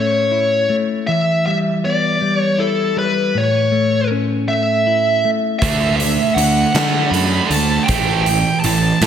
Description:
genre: quiet-loud alternative rock.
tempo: 53 BPM (dotted quarters).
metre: 6/8.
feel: straight.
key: unclear.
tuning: A4 = 440 Hz.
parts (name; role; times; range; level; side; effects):
bluesy overdriven lead guitar; melody; 0.0-9.1 s; A4 to B5; -17 LUFS; equal; distortion, slapback echo.
semi-hollow electric guitar; arpeggios; 0.0-5.6 s; A2 to E4; -19 LUFS; left 3 dB; none.
heavy high-gain guitar; riff; 5.6-9.1 s; A2 to D4; -18 LUFS; right 8 dB; distortion.
fuzz picked electric bass; bass; 5.6-9.1 s; A1 to D3; -19 LUFS; equal; overdrive.
big rock drum kit; drums; 5.6-9.1 s; hi-hat, kick drum, snare drum; -21 LUFS; equal; none.
room: wet lush hall reverb, RT60 1.9 s, small room ambience.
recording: big arena sound.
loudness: -14 LUFS.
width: side -8 dB against mid.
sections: 0.0-9.1 A section.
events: none.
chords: 0.0 A; 1.1 Em; 3.3 A; 5.6 D; 7.9 A5.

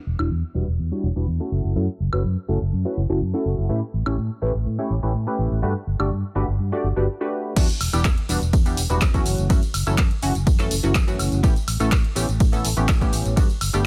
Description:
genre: filtered disco house.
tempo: 124 BPM.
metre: 4/4.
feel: straight.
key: unclear.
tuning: A4 = 440 Hz.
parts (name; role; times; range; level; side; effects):
fingered electric bass; bass; 0.1-13.8 s; E1 to A2; -26 LUFS; equal; sidechain pumping, low-pass filter.
funky polysynth comp; accompaniment; 0.2-13.8 s; E3 to D5; -28 LUFS; equal; chorus, phaser, sidechain pumping, low-pass filter.
punchy analog drum machine; drums; 0.2-13.8 s; crash cymbal, handclaps, hi-hat, ride cymbal, tambourine, woodblock; -30 LUFS; equal; overdrive, sidechain pumping on hats, sidechain pumping on perc, sidechain pumping on cymbals.
electronic kick drum; drums; 7.6-13.5 s; none; -21 LUFS; equal; overdrive.
room: little or no reverb.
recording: none.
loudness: -22 LUFS.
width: mono.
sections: 0.0-7.6 A section; 7.6-13.9 B section.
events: filter sweep 0.0-7.6; break 7.1-7.6; drop 7.6-13.9.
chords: 0.0 Em7; 1.5 F#m7; 3.7 A9; 5.6 Gmaj7; 7.6 Em7; 9.3 F#m7; 11.4 A9.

